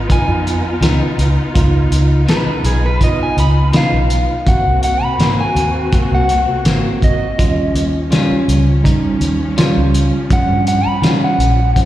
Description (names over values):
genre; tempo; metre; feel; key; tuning
straight-eighth soul blues; 82 BPM; 4/4; swing 53% on 16ths; unclear; A4 = 440 Hz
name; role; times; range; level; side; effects
electric guitar at the edge of break-up; second line; 0.0-11.9 s; Ab4 to Cb6; -19 LUFS; equal; analog delay, slapback echo
dark studio string section; sustained chords; 0.0-11.9 s; F3 to Gb4; -24 LUFS; equal; none
vintage muted fingered electric bass; bass; 0.0-11.7 s; Ab1 to Eb3; -15 LUFS; equal; none
tine electric piano; accompaniment; 0.1-11.9 s; F3 to Ab4; -20 LUFS; right 3 dB; slapback echo
cloth-damped thuddy drum kit; drums; 0.1-11.9 s; hi-hat, kick drum, snare drum; -17 LUFS; equal; none
clean electric guitar; stabs; 0.8-11.3 s; Ab2 to F4; -24 LUFS; left 6 dB; analog delay, slapback echo
room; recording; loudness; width
light reverb, studio ambience; live gig heard through the venue's PA, recital hall reverb; -12 LUFS; side -14 dB against mid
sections
0.0-11.9 A section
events
clean electric guitar solo 0.0-11.9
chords
0.0 Db9; 4.5 Ab9; 7.4 Eb9